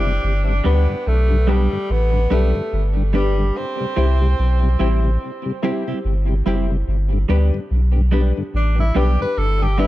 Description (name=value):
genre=reggae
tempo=72 BPM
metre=4/4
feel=swing 59% on 16ths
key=G major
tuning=A4 = 440 Hz
part: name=clear tenor saxophone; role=melody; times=0.0-9.9 s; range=G3 to B4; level=-24 LUFS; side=equal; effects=tape echo
part: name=clear upright piano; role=stabs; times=0.0-9.9 s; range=D4 to C5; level=-28 LUFS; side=left 7 dB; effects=none
part: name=warm sub bass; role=bass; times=0.0-9.9 s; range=F#1 to D2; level=-17 LUFS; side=equal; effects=none
part: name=mellow tonewheel organ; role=accompaniment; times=0.1-9.9 s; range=G2 to G4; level=-28 LUFS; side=left 2 dB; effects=chorus vibrato, slow rotary speaker, tape echo
part: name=semi-hollow electric guitar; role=accompaniment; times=0.6-9.9 s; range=G3 to G4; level=-27 LUFS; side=right 5 dB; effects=phaser, tape echo
room=light reverb, studio ambience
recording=echo-heavy mix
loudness=-16 LUFS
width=side -16 dB against mid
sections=0.0-9.9 A section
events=tenor saxophone solo 0.0-9.9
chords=0.2 G; 3.5 C; 6.9 G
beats=| 0.23 1.06 1.89 2.72 | 3.55 4.38 5.21 6.04 | 6.87 7.70 8.53 9.36